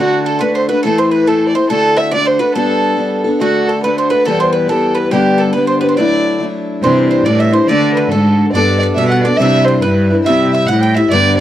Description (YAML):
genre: celtic folk, Celtic polka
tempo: 140 BPM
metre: 2/4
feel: swing 64% on 8ths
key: D mixolydian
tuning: A4 = 438 Hz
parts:
  - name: dark fiddle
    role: melody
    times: 0.0-11.4 s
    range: F#4 to G5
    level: -16 LUFS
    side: right 1 dB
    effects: none
  - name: bowl-back mandolin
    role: second line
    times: 0.0-11.4 s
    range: F#4 to G5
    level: -20 LUFS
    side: right 4 dB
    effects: none
  - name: picked steel-string acoustic guitar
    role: accompaniment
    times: 0.0-11.4 s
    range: E2 to A4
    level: -14 LUFS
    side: left 2 dB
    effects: none
  - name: clear cello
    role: bass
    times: 6.8-11.4 s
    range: G2 to D3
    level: -14 LUFS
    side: right 1 dB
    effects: none
room: light reverb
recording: dry, close 1970s-style studio recording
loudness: -11 LUFS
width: side -12 dB against mid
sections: 0.0-6.8 A section; 6.8-11.4 B section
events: none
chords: 0.0 D; 0.8 Am; 1.7 D/A; 2.6 Gadd9; 3.4 D; 4.3 Em; 5.1 G; 6.0 Dadd9; 6.8 Cadd9; 7.7 D; 8.5 Gadd9; 9.4 Cadd9; 10.3 C